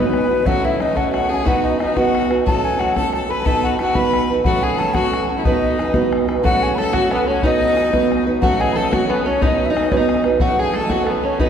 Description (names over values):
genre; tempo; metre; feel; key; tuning
celtic folk, Celtic jig; 121 BPM (dotted quarters); 6/8; straight; B mixolydian; A4 = 440 Hz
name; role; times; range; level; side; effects
bright baroque flute; melody; 0.0-11.5 s; A4 to B5; -21 LUFS; left 1 dB; none
clear fiddle; second line; 0.0-11.5 s; B3 to B4; -24 LUFS; left 4 dB; none
fingerpicked steel-string acoustic guitar; accompaniment; 0.0-11.5 s; F#3 to B4; -19 LUFS; right 3 dB; none
bodhran; percussion; 0.1-11.5 s; none; -23 LUFS; left 1 dB; none
open-back banjo; second line; 6.4-11.5 s; B3 to A4; -25 LUFS; right 1 dB; none
room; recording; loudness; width
wet cathedral reverb, RT60 5.2 s; recorded in a church or concert hall; -15 LUFS; side -8 dB against mid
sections
0.0-6.4 A section; 6.4-11.5 A section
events
none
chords
0.5 F#m; 1.5 B; 2.5 F#m; 3.5 B; 4.5 F#m; 5.5 B; 6.4 F#m; 7.4 B; 8.4 F#m; 9.4 B; 10.4 F#m